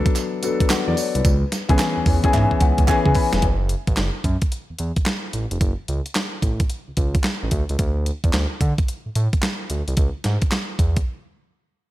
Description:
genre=R&B, new jack swing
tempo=110 BPM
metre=4/4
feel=swing 64% on 16ths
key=F# minor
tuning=A4 = 441 Hz
part: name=dark grand piano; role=accompaniment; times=0.0-3.5 s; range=E3 to B5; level=-21 LUFS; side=left 4 dB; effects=none
part: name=clean 12-bit digital drum machine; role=drums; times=0.1-11.1 s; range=handclaps, hi-hat, kick drum, snare drum, tambourine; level=-21 LUFS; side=right 1 dB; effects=overdrive
part: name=group handclap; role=percussion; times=0.2-3.0 s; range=none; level=-34 LUFS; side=right 7 dB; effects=none
part: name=smooth synth bass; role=bass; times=0.7-11.0 s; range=E#1 to D3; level=-22 LUFS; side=right 1 dB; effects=none
room=digital ambience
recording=none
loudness=-18 LUFS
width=side -16 dB against mid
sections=0.0-3.4 A section; 3.4-11.9 B section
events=grand piano fill 1.8-3.4; drum fill 2.3-3.4; break 11.1-11.9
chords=0.0 D6; 1.2 C#m7; 3.4 F#m; 7.5 D5; 10.0 C#m

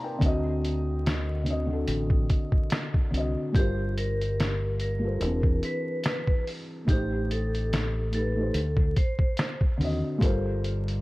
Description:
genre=lo-fi hip hop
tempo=72 BPM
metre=4/4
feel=swing 56% on 16ths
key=unclear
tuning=A4 = 441 Hz
part: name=felt-muted upright piano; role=accompaniment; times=0.0-11.0 s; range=C3 to C6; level=-30 LUFS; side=left 1 dB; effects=cassette tape, low-pass filter
part: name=deep dub fingered electric bass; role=bass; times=0.2-11.0 s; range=E1 to Eb2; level=-29 LUFS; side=equal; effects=none
part: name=lo-fi sampler-style drum kit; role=drums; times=0.2-11.0 s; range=hi-hat, kick drum, snare drum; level=-26 LUFS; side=equal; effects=none
part: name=vibraphone with hard mallets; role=melody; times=3.6-9.6 s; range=G4 to C5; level=-33 LUFS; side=equal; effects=low-pass filter
room=little or no reverb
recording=vinyl crackle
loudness=-24 LUFS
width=side -20 dB against mid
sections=0.0-11.0 A section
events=none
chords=0.2 D7b9; 3.5 Gm11; 5.2 E7b13; 6.9 Am7b5; 8.5 D7b9; 10.2 Gm11

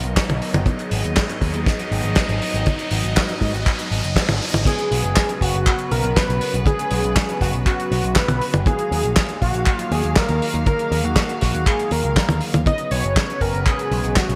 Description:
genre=italo disco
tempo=120 BPM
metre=4/4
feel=straight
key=unclear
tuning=A4 = 441 Hz
part: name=warm chamber string section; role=sustained chords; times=0.0-14.4 s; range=C#3 to F5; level=-30 LUFS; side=equal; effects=vintage 12-bit sampler grit, low-pass filter
part: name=picked electric bass with an envelope filter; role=bass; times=0.0-14.4 s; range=F#1 to Ab2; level=-25 LUFS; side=equal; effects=none
part: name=damped 70s drum kit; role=drums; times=0.0-14.4 s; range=crash cymbal, handclaps, hi-hat, snare drum, toms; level=-25 LUFS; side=equal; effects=studio reverb, gated reverb
part: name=riser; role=sound effects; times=0.0-4.7 s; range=none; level=-32 LUFS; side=equal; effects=none
part: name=kick drum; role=drums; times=0.2-14.3 s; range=none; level=-22 LUFS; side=equal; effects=studio reverb
part: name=unison lead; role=melody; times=4.7-14.4 s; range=F#4 to Eb5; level=-26 LUFS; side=equal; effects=digital delay
room=moderate plate reverb, RT60 2.7 s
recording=bright 1980s-style digital production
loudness=-20 LUFS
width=mono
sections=0.0-4.7 A section; 4.7-14.4 B section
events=riser 0.0-4.7; filter sweep on string section 0.0-4.7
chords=0.0 B; 0.7 Abm7; 4.7 Bsus2; 8.7 Ebmadd9; 12.7 Bsus2

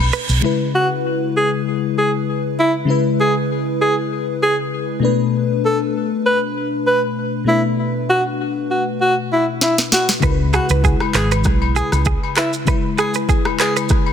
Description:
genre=afrobeats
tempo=98 BPM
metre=4/4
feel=swing 55% on 16ths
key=unclear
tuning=A4 = 440 Hz
part: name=FM electric piano with soft pad layer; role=accompaniment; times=0.0-14.1 s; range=B2 to B4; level=-20 LUFS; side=left 4 dB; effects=chorus
part: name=hollow-body short-scale fingered electric bass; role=bass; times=0.0-0.4, 10.2-12.1 s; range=G#1 to C#2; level=-18 LUFS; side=equal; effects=none
part: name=direct-recorded clean electric guitar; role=riff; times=0.1-0.3, 10.2-13.9 s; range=G#4 to B4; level=-24 LUFS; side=right 8 dB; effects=ping-pong delay
part: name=afro-pop drum kit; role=drums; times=0.1-0.4, 9.6-14.1 s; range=handclaps, kick drum, rim click, shaker, snare drum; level=-18 LUFS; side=equal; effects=soft clipping on snare
part: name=breathy alto saxophone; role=melody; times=0.7-13.7 s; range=E4 to B4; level=-19 LUFS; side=equal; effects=ping-pong delay
part: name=agogo bells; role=percussion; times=10.2-14.1 s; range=none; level=-28 LUFS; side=left 12 dB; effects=none
room=light reverb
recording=dense, heavily limited modern master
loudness=-15 LUFS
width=side -8 dB against mid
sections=0.4-14.1 A section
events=drum fill 9.6-10.2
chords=0.4 C#m7; 5.0 Bm7; 10.2 C#m7

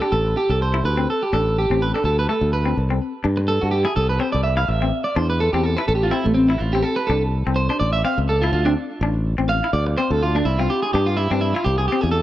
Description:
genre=highlife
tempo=125 BPM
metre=4/4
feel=swing 55% on 16ths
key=C major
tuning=A4 = 440 Hz
part: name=clean electric guitar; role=accompaniment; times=0.0-12.1 s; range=A3 to E4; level=-26 LUFS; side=left 5 dB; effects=none
part: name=electric guitar at the edge of break-up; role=arpeggios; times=0.0-12.2 s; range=A3 to F5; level=-21 LUFS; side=right 2 dB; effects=spring reverb, tape echo
part: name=modern bright fingered electric bass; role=bass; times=0.1-12.2 s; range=A1 to G2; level=-21 LUFS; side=equal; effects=none
room=light reverb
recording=dry, close 1970s-style studio recording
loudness=-18 LUFS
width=side -14 dB against mid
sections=0.0-2.8 A section; 2.8-12.2 B section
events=clean electric guitar solo 2.8-12.2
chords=0.0 Am11; 0.8 D5; 2.8 C; 4.7 Am; 6.6 Amadd11; 8.5 D5; 10.5 C

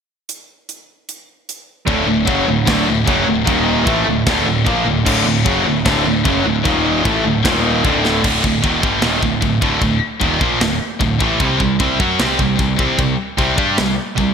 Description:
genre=heavy metal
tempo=151 BPM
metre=4/4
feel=straight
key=D phrygian dominant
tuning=A4 = 440 Hz
part: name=tight metal drum kit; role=drums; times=0.3-14.3 s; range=china cymbal, crash cymbal, hi-hat, kick drum, snare drum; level=-21 LUFS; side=equal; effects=gated reverb
part: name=heavy high-gain guitar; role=riff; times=1.9-14.3 s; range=D2 to G4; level=-19 LUFS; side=left 10 dB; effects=distortion
part: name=high-gain distorted guitar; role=riff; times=1.9-14.3 s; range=D2 to G4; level=-19 LUFS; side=right 8 dB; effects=distortion
part: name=raw garage guitar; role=riff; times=1.9-8.2 s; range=D2 to Bb3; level=-20 LUFS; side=left 1 dB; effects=overdrive
part: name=overdriven picked electric bass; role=bass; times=1.9-14.3 s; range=D1 to G2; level=-23 LUFS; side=equal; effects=none
room=moderate lush hall reverb, RT60 1.9 s, studio ambience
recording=bright 1980s-style digital production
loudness=-13 LUFS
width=side -6 dB against mid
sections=0.3-1.9 A section; 1.9-8.2 B section; 8.2-14.3 C section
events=drum fill 8.0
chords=0.3 N.C.; 1.9 D; 3.5 Eb5; 3.9 D; 6.6 Eb5; 7.0 D5; 7.4 Eb5; 7.8 D5; 11.4 C5

